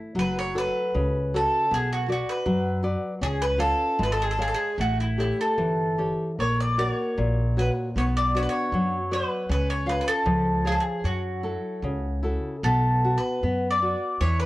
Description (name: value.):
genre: fado-style ballad.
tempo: 76 BPM.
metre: 2/4.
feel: rubato.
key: F# minor.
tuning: A4 = 440 Hz.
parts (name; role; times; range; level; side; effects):
nylon-string guitar; accompaniment; 0.0-14.5 s; A#2 to E#5; -28 LUFS; left 1 dB; none.
upright bass; bass; 0.1-14.5 s; F#1 to F#2; -27 LUFS; equal; tube saturation.
bowl-back mandolin; melody; 0.2-14.5 s; E4 to D5; -26 LUFS; equal; plate reverb.
room: light reverb.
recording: worn, warbling old tape, cassette tape, warbly pitch drift.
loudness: -22 LUFS.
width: side -17 dB against mid.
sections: 0.1-12.6 A section; 12.6-14.5 B section.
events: none.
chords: 0.1 F#m; 1.7 Bm; 3.2 C#; 4.8 A7; 6.4 F#/A#; 8.0 Bm; 9.5 C#; 11.0 F#m7; 12.6 B5.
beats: | 0.14 0.94 | 1.71 2.46 | 3.21 3.99 | 4.78 5.58 | 6.38 7.17 | 7.96 8.72 | 9.49 10.26 | 11.04 11.83 | 12.63 13.43 | 14.21.